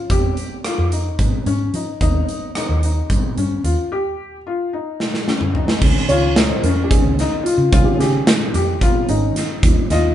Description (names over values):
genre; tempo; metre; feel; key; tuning
progressive instrumental, band music in an uneven meter; 220 BPM (eighths); 7/8; straight; Db lydian; A4 = 440 Hz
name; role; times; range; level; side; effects
felt-muted upright piano; arpeggios; 0.0-10.1 s; Db4 to G4; -23 LUFS; left 4 dB; none
vintage muted fingered electric bass; bass; 0.1-10.1 s; Ab1 to F3; -20 LUFS; equal; none
big rock drum kit; drums; 0.1-10.0 s; crash cymbal, hi-hat, kick drum, rim click, snare drum, toms; -18 LUFS; equal; none
dark grand piano; accompaniment; 5.8-10.1 s; Eb3 to Eb5; -21 LUFS; right 1 dB; none
room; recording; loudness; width
moderate large studio reverb, RT60 1.2 s; band playing live in one room, nothing above 10.8 kHz; -15 LUFS; side -11 dB against mid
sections
0.0-5.8 A section; 5.8-10.1 B section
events
break 3.9-5.8; drum fill 5.0-5.8; grand piano solo 5.8-10.1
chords
0.0 Fm7; 2.0 Eb; 3.9 Dbadd9; 5.8 Dbsus2; 9.6 Ebadd9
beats
| 0.10 0.37 0.64 0.92 1.19 1.46 1.74 | 2.01 2.28 2.55 2.83 3.10 3.37 3.64 | 3.92 4.19 4.46 4.73 5.01 5.28 5.55 | 5.82 6.10 6.37 6.64 6.91 7.18 7.46 | 7.73 8.00 8.27 8.54 8.82 9.09 9.36 | 9.63 9.90